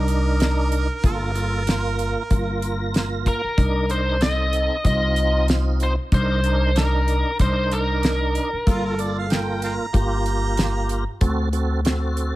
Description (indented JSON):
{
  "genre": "straight-eighth soul blues",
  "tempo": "94 BPM",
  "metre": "4/4",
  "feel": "swing 55% on 16ths",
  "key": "G minor",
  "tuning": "A4 = 439 Hz",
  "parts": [
    { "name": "clear harmonica", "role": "second line", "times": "0.0-2.9, 8.7-11.2 s", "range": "F4 to Bb5", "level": "-29 LUFS", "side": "right 3 dB", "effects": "overdrive, plate reverb" },
    { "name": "tonewheel organ", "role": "accompaniment", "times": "0.0-12.4 s", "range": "Bb3 to Bb4", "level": "-27 LUFS", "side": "right 3 dB", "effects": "slow rotary speaker, overdrive, chorus vibrato, plate reverb" },
    { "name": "upright bass", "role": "bass", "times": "0.0-12.3 s", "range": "G1 to D2", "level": "-22 LUFS", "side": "equal", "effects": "none" },
    { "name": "damped 70s drum kit", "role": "drums", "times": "0.1-12.3 s", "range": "hi-hat, kick drum, snare drum", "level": "-21 LUFS", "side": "equal", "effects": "none" },
    { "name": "biting lead guitar", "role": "melody", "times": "3.3-9.6 s", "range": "Bb4 to Eb5", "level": "-24 LUFS", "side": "left 1 dB", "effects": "overdrive, plate reverb" }
  ],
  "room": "light reverb",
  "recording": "none",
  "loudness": "-19 LUFS",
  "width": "side -17 dB against mid",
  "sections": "0.0-12.4 A section",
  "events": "none",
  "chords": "0.0 Cm7; 1.0 Gm7; 3.6 Cm7; 8.7 Gm7; 11.2 D7"
}